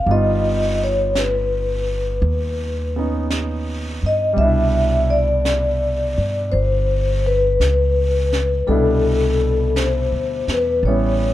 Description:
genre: jazz ballad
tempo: 56 BPM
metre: 4/4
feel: swing 68% on 8ths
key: C major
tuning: A4 = 440 Hz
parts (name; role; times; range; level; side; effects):
- vibraphone with soft mallets; melody; 0.0-11.3 s; A4 to E5; -20 LUFS; left 2 dB; none
- clear concert grand piano; accompaniment; 0.0-11.3 s; B2 to F4; -25 LUFS; right 2 dB; none
- upright bass; bass; 0.0-11.3 s; G1 to G2; -20 LUFS; equal; none
- jazz brush drum kit; drums; 0.1-11.3 s; brushed snare drum, hi-hat, snare drum; -30 LUFS; right 1 dB; none
room: little or no reverb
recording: dark, warm production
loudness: -16 LUFS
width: side -14 dB against mid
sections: 0.0-11.3 A section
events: none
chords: 0.1 Gaug7; 4.4 Cmaj9

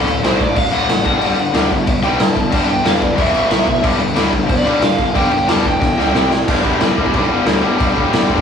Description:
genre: punk rock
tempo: 182 BPM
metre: 4/4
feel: straight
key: unclear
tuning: A4 = 440 Hz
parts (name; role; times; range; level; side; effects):
- crunchy overdriven guitar; melody; 0.0-6.3 s; A4 to A5; -19 LUFS; right 1 dB; none
- distorted electric guitar; riff; 0.0-8.4 s; D2 to C4; -23 LUFS; right 3 dB; overdrive
- tight distorted guitar; riff; 0.0-8.4 s; D2 to C4; -20 LUFS; left 5 dB; distortion
- fuzz picked electric bass; bass; 0.0-8.4 s; D1 to G2; -22 LUFS; left 1 dB; overdrive
- raw garage drum kit; drums; 0.1-8.4 s; crash cymbal, kick drum, snare drum; -16 LUFS; equal; none
room: moderate small room reverb, RT60 0.6 s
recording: rough rehearsal-room recording, small room ambience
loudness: -13 LUFS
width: side -7 dB against mid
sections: 0.0-6.5 A section; 6.5-8.4 B section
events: overdriven electric guitar solo 0.0-6.5; drum fill 5.8-6.5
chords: 0.0 D; 1.1 G5; 3.2 E5; 3.5 B5; 3.8 G5; 6.1 C5; 6.5 G5

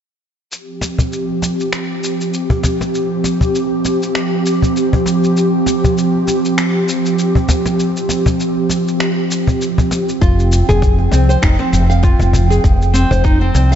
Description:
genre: organic downtempo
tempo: 99 BPM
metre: 4/4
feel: swing 57% on 16ths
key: unclear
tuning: A4 = 440 Hz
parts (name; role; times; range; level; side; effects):
- airy breathy pad; sustained chords; 0.5-13.8 s; F3 to G5; -16 LUFS; right 1 dB; chorus, sidechain pumping
- electronic shaker and finger snaps; drums; 0.5-13.8 s; none; -24 LUFS; left 1 dB; studio reverb
- cajon; percussion; 0.8-13.7 s; none; -18 LUFS; left 1 dB; none
- nylon-string guitar; arpeggios; 10.2-13.8 s; C4 to F5; -19 LUFS; left 1 dB; digital delay
- woody fretless electric bass; bass; 10.2-13.8 s; F1 to C2; -13 LUFS; equal; tube saturation, ensemble chorus, sidechain pumping
- electronic kick drum; drums; 10.2-13.4 s; none; -14 LUFS; equal; studio reverb
room: moderate lush hall reverb, RT60 2.9 s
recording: dark, warm production, nothing above 7.8 kHz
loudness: -12 LUFS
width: side -9 dB against mid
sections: 0.5-10.2 A section; 10.2-13.8 B section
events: none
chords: 0.5 F5; 10.2 Fm

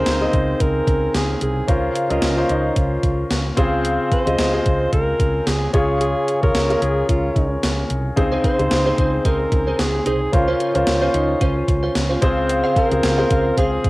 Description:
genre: 1980s-style pop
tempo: 111 BPM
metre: 4/4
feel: swing 55% on 16ths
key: Db major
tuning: A4 = 440 Hz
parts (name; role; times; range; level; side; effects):
- mellow alto saxophone; melody; 0.0-13.9 s; Eb4 to C5; -23 LUFS; equal; cassette tape
- warm concert grand piano; accompaniment; 0.0-13.9 s; Db3 to Eb5; -21 LUFS; left 1 dB; cassette tape
- woody fretless electric bass; bass; 0.0-13.9 s; C2 to Db2; -23 LUFS; equal; none
- gated 80s digital drum machine; drums; 0.1-13.9 s; hi-hat, kick drum, snare drum; -21 LUFS; equal; gated reverb, gated reverb snare, cassette tape
- direct-recorded clean electric guitar; riff; 8.2-13.9 s; Db4 to F5; -26 LUFS; right 2 dB; ensemble chorus, cassette tape
room: light reverb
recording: home recording on cassette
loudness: -16 LUFS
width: side -20 dB against mid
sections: 0.0-13.9 A section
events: none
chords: 0.0 Ab/Db; 1.7 Bbmadd9/Db; 3.6 Fm/Db; 5.7 Db; 8.2 Ab/Db; 10.3 Bbmadd9/Db; 12.2 Fm/Db

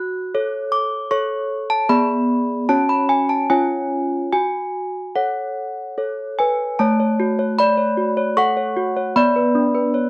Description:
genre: classical, lullaby for handbells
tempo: 74 BPM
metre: 3/4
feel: uneven beats, rubato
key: F# minor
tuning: A4 = 438 Hz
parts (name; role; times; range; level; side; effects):
- desk bells; solo; 0.0-10.1 s; A3 to F#6; -17 LUFS; equal; none
room: little or no reverb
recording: dry, close 1970s-style studio recording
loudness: -17 LUFS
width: side -24 dB against mid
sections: 0.0-6.8 A section; 6.8-10.1 B section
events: none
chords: 0.0 F#m; 1.9 G#dim/B; 2.7 F#5/C#; 3.5 C#; 4.3 F#m; 6.8 F#m/A; 9.2 Bm

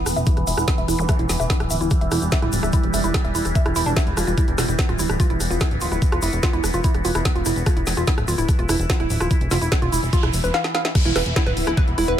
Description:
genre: psychedelic trance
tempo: 146 BPM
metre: 4/4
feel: straight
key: E phrygian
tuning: A4 = 440 Hz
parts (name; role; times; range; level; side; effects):
- overtone-sweeping drone; sustained chords; 0.0-12.2 s; E3 to E4; -27 LUFS; right 1 dB; chorus, built-in reverb, sidechain pumping
- woody wave-folded pluck; riff; 0.0-12.1 s; D4 to F5; -25 LUFS; moving between left 3 dB and right 5 dB; chorus, auto-pan, sidechain pumping, tape echo
- plucky analog bass; bass; 0.0-12.1 s; D1 to F1; -24 LUFS; equal; none
- drum and bass drum kit; drums; 0.1-12.2 s; crash cymbal, hi-hat, rim click, snare drum; -27 LUFS; equal; overdrive
- tube shaker; percussion; 0.1-10.5 s; none; -31 LUFS; left 4 dB; none
- electronic kick drum; drums; 0.3-11.9 s; none; -19 LUFS; equal; overdrive
- zap, noise sweep and downlifter; sound effects; 1.0-1.1, 9.7-12.2 s; none; -32 LUFS; right 1 dB; none
- airy breathy pad; texture; 11.3-12.2 s; E4 to B5; -28 LUFS; equal; chorus, phaser, sidechain pumping
room: little or no reverb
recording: none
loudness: -18 LUFS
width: side -10 dB against mid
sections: 0.0-11.0 A section; 11.0-12.2 B section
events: filter sweep on synth arpeggio sound 0.0-11.0; noise sweep 9.7-11.0; drum fill 10.5-11.0; drop 11.0-12.2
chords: 0.0 E5

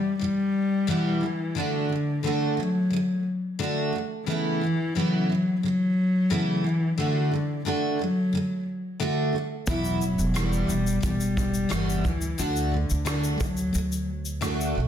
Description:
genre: acoustic pop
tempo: 89 BPM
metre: 4/4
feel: straight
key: D major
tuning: A4 = 439 Hz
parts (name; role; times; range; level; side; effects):
- dark cello; melody; 0.0-14.1 s; D3 to G3; -26 LUFS; left 1 dB; ping-pong delay
- picked steel-string acoustic guitar; accompaniment; 0.0-14.9 s; E2 to F#4; -27 LUFS; equal; double-tracked left and right
- upright bass; bass; 9.7-14.9 s; E1 to D2; -28 LUFS; right 1 dB; none
- soft brush drum kit; drums; 9.7-14.8 s; kick drum, rim click, shaker; -31 LUFS; equal; none
room: wet studio reverb, RT60 1.0 s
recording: dense, heavily limited modern master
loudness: -23 LUFS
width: side -9 dB against mid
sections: 0.0-14.9 A section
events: none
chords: 0.0 Em; 1.2 D; 4.3 Aadd9/C#; 7.0 D; 9.7 Em; 12.0 D

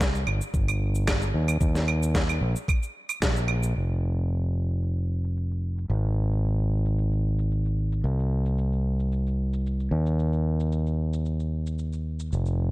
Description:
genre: sunset chillout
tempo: 112 BPM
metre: 4/4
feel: straight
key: unclear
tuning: A4 = 444 Hz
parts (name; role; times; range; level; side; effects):
- overdriven fingered electric bass; bass; 0.0-12.7 s; F1 to Eb2; -24 LUFS; equal; tube saturation
- electronic kick drum; drums; 0.0-3.3 s; none; -25 LUFS; equal; none
- electronic snare drum, cabasa and claves; drums; 0.0-12.6 s; none; -29 LUFS; right 1 dB; low-pass filter on perc, low-pass filter on snare
room: little or no reverb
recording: dark, warm production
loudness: -24 LUFS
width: side -20 dB against mid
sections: 0.0-3.8 A section; 3.8-12.7 B section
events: filter sweep on drum 3.8-12.7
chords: none

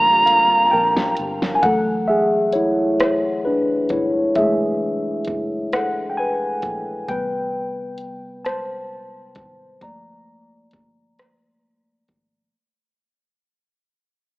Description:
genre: slow six-eight R&B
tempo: 44 BPM (dotted quarters)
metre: 6/8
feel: straight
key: unclear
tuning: A4 = 439 Hz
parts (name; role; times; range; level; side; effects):
- fuzz lead guitar; melody; 0.0-1.1 s; Bb5; -15 LUFS; right 1 dB; distortion
- mellow tine electric piano; accompaniment; 0.0-12.6 s; C3 to Bb5; -20 LUFS; left 1 dB; overdrive, wide subtle chorus
- dark studio string section; sustained chords; 0.0-1.6 s; D3 to F4; -31 LUFS; equal; none
- fingered electric bass; bass; 0.0-12.5 s; F#1 to Bb1; -38 LUFS; equal; none
- smooth R&B drum kit; drums; 0.3-12.3 s; hi-hat, kick drum, rim click, snare drum; -25 LUFS; equal; none
room: moderate lush hall reverb, RT60 3.0 s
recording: rough home demo mix, AM radio sound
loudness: -17 LUFS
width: side -20 dB against mid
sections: 0.0-1.6 A section; 1.6-12.5 B section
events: drum fill 0.3-1.6; fade-out 1.6-12.5; tine electric piano solo 1.6-12.5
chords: 0.0 Gm9; 1.6 F#m9; 7.1 Am9; 9.8 Gm9

